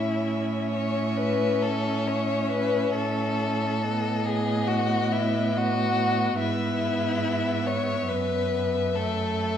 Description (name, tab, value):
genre	classical, slow romantic movement for string quartet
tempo	69 BPM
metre	4/4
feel	rubato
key	A major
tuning	A4 = 440 Hz
part	rich violin	melody	0.0-9.6 s	D#5 to E5	-34 LUFS	left 10 dB	none
part	rich violin	second line	0.0-9.6 s	E4 to C#5	-27 LUFS	left 4 dB	none
part	rich viola	accompaniment	0.0-9.6 s	A3 to C#4	-30 LUFS	right 1 dB	none
part	rich cello	bass	0.0-9.6 s	F#2 to A2	-28 LUFS	right 4 dB	none
room	wet recital hall reverb, RT60 1.3 s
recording	none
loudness	-23 LUFS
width	side -9 dB against mid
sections	0.0-9.6 A section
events	none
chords	0.0 A; 3.0 B7/A; 6.4 E/G#; 8.1 F#m7